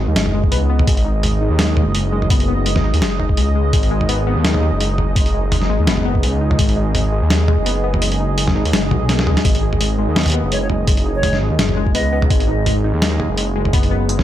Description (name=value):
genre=half-time drum and bass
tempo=168 BPM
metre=4/4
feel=swing 55% on 16ths, half-time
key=G# minor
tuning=A4 = 442 Hz
part: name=dark analog pad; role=sustained chords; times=0.0-14.2 s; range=G#3 to D#5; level=-24 LUFS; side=right 4 dB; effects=chorus, sidechain pumping
part: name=warbly dusty pluck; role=arpeggios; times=0.0-14.2 s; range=F#3 to G#4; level=-24 LUFS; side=left 6 dB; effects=chorus, tape echo
part: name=dark detuned saw bass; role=bass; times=0.0-14.2 s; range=F#1 to D#2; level=-18 LUFS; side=equal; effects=none
part: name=boom bap sampler-style drum kit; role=drums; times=0.2-14.2 s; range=hi-hat, snare drum, toms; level=-19 LUFS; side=equal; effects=none
part: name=electronic kick drum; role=drums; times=0.4-6.7, 9.4-13.8 s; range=none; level=-17 LUFS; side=equal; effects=none
part: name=concert flute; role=melody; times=10.5-12.2 s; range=C#5 to D#5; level=-25 LUFS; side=right 1 dB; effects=ping-pong delay
room=little or no reverb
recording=none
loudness=-14 LUFS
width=side -12 dB against mid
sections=0.0-14.2 A section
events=kick drops out 8.0-9.4; drum fill 8.9-9.4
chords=0.0 G#5